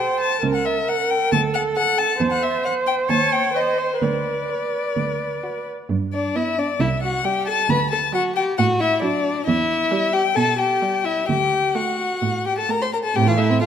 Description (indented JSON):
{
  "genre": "quick classical-period movement for string quartet",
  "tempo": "126-137 BPM",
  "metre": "4/4",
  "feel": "rubato",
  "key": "unclear",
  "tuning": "A4 = 435 Hz",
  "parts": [
    { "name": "warm violin", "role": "melody", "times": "0.0-13.7 s", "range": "C5 to C6", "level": "-22 LUFS", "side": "left 6 dB", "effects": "none" },
    { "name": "warm violin", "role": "second line", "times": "0.0-13.7 s", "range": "D4 to Db5", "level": "-25 LUFS", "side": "left 1 dB", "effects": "none" },
    { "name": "warm viola", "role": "accompaniment", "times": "0.0-13.7 s", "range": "C3 to Db5", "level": "-24 LUFS", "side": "right 4 dB", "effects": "none" },
    { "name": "dark cello", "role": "bass", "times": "0.4-13.5 s", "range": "C2 to B2", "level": "-24 LUFS", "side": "right 4 dB", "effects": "none" }
  ],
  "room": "moderate concert hall reverb, RT60 2.4 s",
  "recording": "none",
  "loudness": "-18 LUFS",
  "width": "side -8 dB against mid",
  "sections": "0.0-5.9 A section; 5.9-13.7 B section",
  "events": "none",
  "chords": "0.4 C#dim7; 1.3 D5; 2.2 C/E; 3.1 Eb7#11; 4.0 Bm/D; 5.9 G; 6.8 C5; 7.7 D; 9.5 Em; 11.3 D; 13.2 Am"
}